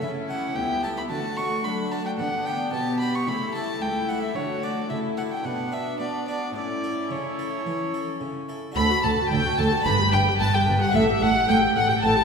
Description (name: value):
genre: classical, baroque-style concerto movement with solo episodes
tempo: 110 BPM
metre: 4/4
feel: straight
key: D major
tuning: A4 = 440 Hz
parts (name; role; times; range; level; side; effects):
- rich chamber violin section; melody; 0.0-12.2 s; F#4 to B5; -31 LUFS; left 3 dB; none
- warm violin; melody; 0.0-12.2 s; C#5 to C#6; -27 LUFS; left 1 dB; none
- warm studio violin section; second line; 0.0-12.2 s; C#4 to B5; -30 LUFS; left 2 dB; none
- harpsichord; accompaniment; 0.0-12.2 s; C#2 to B4; -31 LUFS; left 1 dB; none
- warm chamber viola section; accompaniment; 0.0-12.2 s; A3 to B4; -30 LUFS; equal; none
- dark chamber cello section; bass; 0.0-12.1 s; C#2 to B3; -29 LUFS; right 3 dB; none
- rich chamber double bass section; bass; 8.8-12.1 s; G1 to D2; -28 LUFS; right 3 dB; none
room: wet scoring stage reverb, RT60 1.6 s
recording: heard from further back in the room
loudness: -22 LUFS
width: side -5 dB against mid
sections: 0.0-8.8 A section; 8.8-12.2 B section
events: none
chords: 0.0 A7/C#; 1.1 D; 2.2 G/D; 3.3 A7/C#; 4.4 D; 5.4 Bm; 6.6 A; 8.8 D; 9.9 G; 10.9 A7